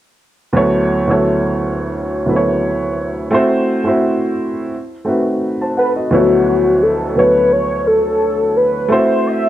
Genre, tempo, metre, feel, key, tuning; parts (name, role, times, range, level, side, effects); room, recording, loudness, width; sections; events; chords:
hip hop; 86 BPM; 4/4; swing 57% on 16ths; D major; A4 = 440 Hz
dark upright piano; accompaniment; 0.5-9.5 s; D2 to A5; -15 LUFS; right 1 dB; low-pass filter
warm velvety synth lead; melody; 5.8-9.5 s; F#4 to E5; -14 LUFS; left 2 dB; chorus, low-pass filter
moderate spring reverb, RT60 1.4 s; cassette tape; -13 LUFS; side -12 dB against mid
0.5-6.1 A section; 6.1-9.5 B section
0.5 Dmaj9; 3.3 F#m7b5; 4.7 B7b9; 6.1 Dmaj9; 8.9 F#m7b5